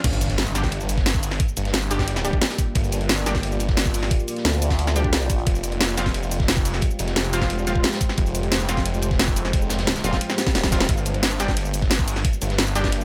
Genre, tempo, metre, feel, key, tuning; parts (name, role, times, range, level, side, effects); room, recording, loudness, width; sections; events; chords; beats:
dark technical drum and bass; 177 BPM; 4/4; straight; G phrygian; A4 = 440 Hz
deep dark ambient pad; sustained chords; 1.6-13.0 s; Ab3 to D5; -33 LUFS; equal; chorus, built-in reverb, vintage 12-bit sampler grit, sidechain pumping
snarling distorted saw bass; bass; 0.0-13.0 s; F1 to G1; -28 LUFS; equal; distortion, overdrive, high-pass filter
crunchy breakbeat drum kit; drums; 0.0-13.0 s; hi-hat, snare drum; -36 LUFS; equal
drum and bass drum kit; drums; 0.0-13.0 s; crash cymbal, hi-hat, shaker, snare drum; -26 LUFS; equal; high-pass filter on snare, high-pass filter on hats, high-pass filter on perc, high-pass filter on cymbals
electronic kick drum; drums; 0.0-12.9 s; -25 LUFS; equal
riser, impact and swell; sound effects; 0.0-1.4, 10.3-10.9 s; -34 LUFS; equal
orchestra-hit-like synth stab; stabs; 0.6-13.0 s; F3 to G4; -31 LUFS; equal; built-in reverb, tape echo
formant-sweep wobble bass; bass; 4.5-5.5, 10.0-10.9 s; Eb1 to D2; -25 LUFS; equal; chorus
digital ambience; -22 LUFS; mono
0.0-13.0 A section
drop 0.0-13.0; impact 0.0-1.4; swell 10.3-10.9; drum fill 10.4-10.9
0.0 Gm7; 5.5 Fmadd9; 10.9 Gm7
| 0.04 0.38 0.72 1.06 | 1.40 1.74 2.08 2.42 | 2.75 3.09 3.43 3.77 | 4.11 4.45 4.79 5.13 | 5.47 5.81 6.14 6.48 | 6.82 7.16 7.50 7.84 | 8.18 8.52 8.86 9.20 | 9.54 9.87 10.21 10.55 | 10.89 11.23 11.57 11.91 | 12.25 12.59 12.92